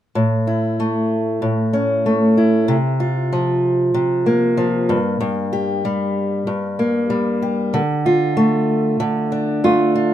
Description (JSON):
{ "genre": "pop", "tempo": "95 BPM", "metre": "4/4", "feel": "swing 55% on 16ths", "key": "unclear", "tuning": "A4 = 444 Hz", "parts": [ { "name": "fingerpicked steel-string acoustic guitar", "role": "accompaniment", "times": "0.2-10.1 s", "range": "G2 to G4", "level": "-16 LUFS", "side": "equal", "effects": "none" }, { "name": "nylon-string guitar", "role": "melody", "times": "9.6-10.1 s", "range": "F4", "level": "-15 LUFS", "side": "right 2 dB", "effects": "none" } ], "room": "light reverb", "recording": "minimal, uncompressed stereo recording", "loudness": "-16 LUFS", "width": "side -11 dB against mid", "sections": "0.2-10.1 A section", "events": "none", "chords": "0.2 A; 2.7 C7sus4; 4.9 Gm; 7.7 Dm" }